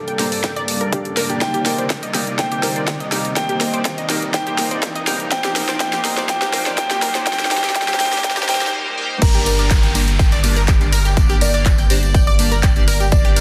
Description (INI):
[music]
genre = progressive house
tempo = 123 BPM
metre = 4/4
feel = straight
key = G minor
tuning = A4 = 441 Hz
[part]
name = dark baby grand piano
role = melody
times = 0.0-13.4 s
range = A4 to G5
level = -27 LUFS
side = equal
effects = sidechain pumping, dub echo
[part]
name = filtered supersaw swell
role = sustained chords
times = 0.0-13.4 s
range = G2 to D5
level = -31 LUFS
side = equal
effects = sidechain pumping
[part]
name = riser and downlifter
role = sound effects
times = 0.0-13.1 s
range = none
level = -33 LUFS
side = equal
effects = none
[part]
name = unison pluck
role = arpeggios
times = 0.1-13.4 s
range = G4 to Bb6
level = -28 LUFS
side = equal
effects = sidechain pumping, tape echo
[part]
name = big-room dance drum kit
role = drums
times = 0.1-13.4 s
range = crash cymbal, handclaps, hi-hat, ride cymbal, snare drum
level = -25 LUFS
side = equal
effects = overdrive, high-pass filter on snare, high-pass filter on hats, high-pass filter on cymbals
[part]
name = chorused polysynth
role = stabs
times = 0.2-13.4 s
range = Bb3 to F5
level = -28 LUFS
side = equal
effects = phaser, sidechain pumping, tape echo
[part]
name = electronic kick drum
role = drums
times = 0.4-13.2 s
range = none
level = -18 LUFS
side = equal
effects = overdrive, high-pass filter on kick
[part]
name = warm studio violin section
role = second line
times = 9.2-13.4 s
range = Bb4 to D5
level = -33 LUFS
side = equal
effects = none
[part]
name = saturated sub bass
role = bass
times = 9.2-13.4 s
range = G1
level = -21 LUFS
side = equal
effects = sidechain pumping
[part]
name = tambourine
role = percussion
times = 9.2-13.4 s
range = none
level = -31 LUFS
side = equal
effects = none
[sound]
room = moderate lush hall reverb, RT60 1.5 s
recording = dense, heavily limited modern master, high-pass filter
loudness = -18 LUFS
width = mono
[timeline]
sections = 0.0-9.2 A section; 9.2-13.4 B section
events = build-up 0.0-9.2; drum fill 0.0-8.7; riser 0.0-8.7; filter sweep on synth pluck 0.0-9.2; filter sweep on analog polysynth 0.0-9.2; filter sweep on grand piano 0.0-9.2; break 8.7-9.2; drop 9.2-13.4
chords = 0.0 Gm; 1.4 Cm7; 9.2 Gm